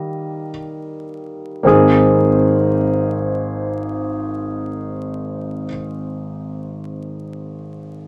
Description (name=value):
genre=pop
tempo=free time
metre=none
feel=none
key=Ab major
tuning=A4 = 440 Hz
part: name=warm concert grand piano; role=accompaniment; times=0.0-8.1 s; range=Ab1 to Eb5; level=-20 LUFS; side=equal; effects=none
room=wet studio ambience, RT60 0.5 s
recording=vinyl crackle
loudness=-18 LUFS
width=mono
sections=0.0-1.6 A section; 1.6-6.0 B section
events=slowing down 0.0-1.6; grand piano solo 0.0-1.6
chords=0.0 Eb; 1.6 Abadd9